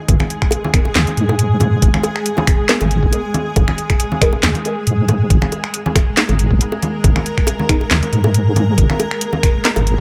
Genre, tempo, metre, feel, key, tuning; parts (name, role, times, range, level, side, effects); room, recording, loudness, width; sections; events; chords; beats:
deep dubstep; 138 BPM; 4/4; swing 54% on 16ths, half-time; A4 = 440 Hz
granular cloud pad; sustained chords; 0.0-10.0 s; G#3 to A#4; -25 LUFS; equal; built-in reverb
deep soft wobble bass; bass; 0.1-10.0 s; G#1 to G#2; -17 LUFS; equal; chorus
electronic kick drum; drums; 0.1-10.0 s; -17 LUFS; equal
garage drum kit; drums; 0.1-10.0 s; finger snaps, handclaps, hi-hat, snare drum; -21 LUFS; equal
bongos and congas; percussion; 0.1-9.8 s; -25 LUFS; equal; dub echo
filtered dub chord stab; stabs; 0.7-9.7 s; B3 to A#4; -26 LUFS; equal; phaser, analog chorus, dub echo
light reverb; -16 LUFS; mono
0.0-10.0 A section
0.0 G#sus2
| 0.08 0.52 0.95 1.39 | 1.82 2.26 2.69 3.13 | 3.56 4.00 4.43 4.87 | 5.30 5.74 6.17 6.61 | 7.04 7.47 7.91 8.35 | 8.78 9.21 9.65